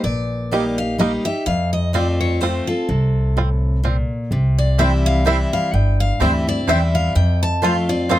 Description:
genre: bluegrass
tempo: 126 BPM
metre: 3/4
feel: swing 55% on 8ths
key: F major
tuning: A4 = 440 Hz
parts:
  - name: picked steel-string acoustic guitar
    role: melody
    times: 0.0-8.2 s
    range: A4 to A5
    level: -24 LUFS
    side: left 2 dB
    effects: none
  - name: picked steel-string acoustic guitar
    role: accompaniment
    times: 0.0-8.2 s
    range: F2 to G4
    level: -22 LUFS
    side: left 1 dB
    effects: none
  - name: upright bass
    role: bass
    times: 0.0-8.2 s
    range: G1 to F2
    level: -19 LUFS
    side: equal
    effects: none
  - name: bluegrass banjo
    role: melody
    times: 0.5-8.2 s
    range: Bb3 to G4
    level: -22 LUFS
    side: right 4 dB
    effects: none
  - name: mandolin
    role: stabs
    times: 4.8-8.2 s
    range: C4 to A5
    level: -20 LUFS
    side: right 1 dB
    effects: none
room: little or no reverb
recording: none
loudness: -16 LUFS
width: side -14 dB against mid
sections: 0.0-8.2 A section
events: steel-string acoustic guitar solo 0.0-8.2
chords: 0.0 Eb; 1.5 F; 4.3 C; 7.2 F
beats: | 0.04 0.52 0.99 | 1.47 1.94 2.41 | 2.89 3.36 3.84 | 4.31 4.79 5.26 | 5.73 6.21 6.68 | 7.16 7.63 8.10

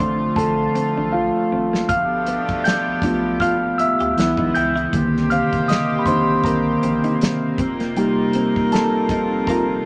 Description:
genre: R&B, neo-soul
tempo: 79 BPM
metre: 4/4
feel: swing 55% on 16ths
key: C dorian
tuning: A4 = 440 Hz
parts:
  - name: clean electric guitar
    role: second line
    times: 0.0-9.6 s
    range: Bb3 to G4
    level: -30 LUFS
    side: equal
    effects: none
  - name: mellow tine electric piano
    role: accompaniment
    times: 0.0-9.9 s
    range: D3 to G6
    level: -21 LUFS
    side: equal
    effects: none
  - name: chorused pulse-width pad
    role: sustained chords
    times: 0.0-9.9 s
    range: C3 to G4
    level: -28 LUFS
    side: equal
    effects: none
  - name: rubbery square bass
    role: bass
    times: 0.0-9.8 s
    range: F1 to D2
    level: -37 LUFS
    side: equal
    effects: none
  - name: warm soul drum kit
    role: drums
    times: 0.4-9.7 s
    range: hi-hat, kick drum, snare drum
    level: -27 LUFS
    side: equal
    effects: none
  - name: mellow horn section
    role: stabs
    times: 1.9-9.9 s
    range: B2 to Bb4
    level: -30 LUFS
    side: equal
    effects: none
room: moderate studio reverb, RT60 0.6 s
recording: none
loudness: -19 LUFS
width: mono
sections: 0.0-9.9 A section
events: tine electric piano solo 0.0-9.9; drum fill 1.1-1.9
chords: 0.0 Bbmaj7; 1.9 G9; 4.2 Dbm7; 4.9 Cm7; 7.6 F7sus4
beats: 0.37 1.13 | 1.89 2.65 3.40 4.17 | 4.92 5.68 6.44 7.20 | 7.96 8.72 9.48

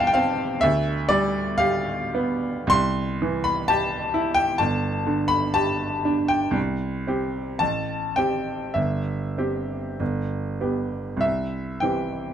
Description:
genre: classical, romantic nocturne for solo piano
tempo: 47-67 BPM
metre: 4/4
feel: rubato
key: C major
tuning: A4 = 440 Hz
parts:
  - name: clear baby grand piano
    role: solo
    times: 0.0-12.3 s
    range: E1 to C6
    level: -21 LUFS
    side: equal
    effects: none
room: light reverb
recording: dark, warm production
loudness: -22 LUFS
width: side -9 dB against mid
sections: 0.0-11.2 A section; 11.2-12.3 B section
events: none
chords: 0.0 C/E; 0.6 G7/D; 2.7 C; 4.6 G5; 6.6 C5; 7.6 Am7; 8.8 C/G; 10.0 G; 11.2 C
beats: 0.63 1.59 | 2.71 3.68 4.59 5.56 | 6.56 7.61 8.77 10.00 | 11.22

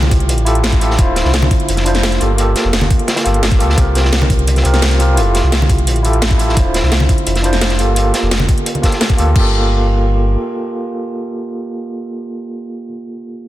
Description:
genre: liquid drum and bass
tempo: 172 BPM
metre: 4/4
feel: straight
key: G dorian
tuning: A4 = 443 Hz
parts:
  - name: overdriven tine electric piano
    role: accompaniment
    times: 0.0-13.5 s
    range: Bb3 to C5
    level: -18 LUFS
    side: right 1 dB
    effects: fast tremolo, dub echo
  - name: sub bass with octave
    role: bass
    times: 0.0-10.4 s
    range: D1 to D2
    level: -14 LUFS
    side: equal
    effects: none
  - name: congas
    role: percussion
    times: 0.0-8.8 s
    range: none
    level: -23 LUFS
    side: equal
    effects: none
  - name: crunchy breakbeat drum kit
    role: drums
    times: 0.1-9.3 s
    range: hi-hat, snare drum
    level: -22 LUFS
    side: equal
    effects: high-pass filter on hats, high-pass filter on snare, high-pass filter on room
  - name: drum and bass drum kit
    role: drums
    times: 0.1-9.4 s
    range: crash cymbal, hi-hat, snare drum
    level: -20 LUFS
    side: equal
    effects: none
  - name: electronic kick drum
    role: drums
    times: 0.1-9.4 s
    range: none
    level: -14 LUFS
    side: equal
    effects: none
room: light reverb, studio ambience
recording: dense, heavily limited modern master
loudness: -11 LUFS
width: side -14 dB against mid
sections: 0.0-9.4 A section; 9.4-12.2 B section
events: none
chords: 0.0 Fmaj9; 1.0 Dm9; 2.2 Gm9; 3.8 C7sus4; 5.2 Fmaj9; 6.6 Dm9; 7.8 Gm9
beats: 0.29 0.64 | 0.99 1.34 1.69 2.03 | 2.38 2.73 3.08 3.43 | 3.78 4.13 4.47 4.82 | 5.17 5.52 5.87 6.22 | 6.57 6.92 7.27 7.62 | 7.96 8.31 8.66 9.01 | 9.36 9.71 10.06 10.41 | 10.75 11.10 11.45 11.80

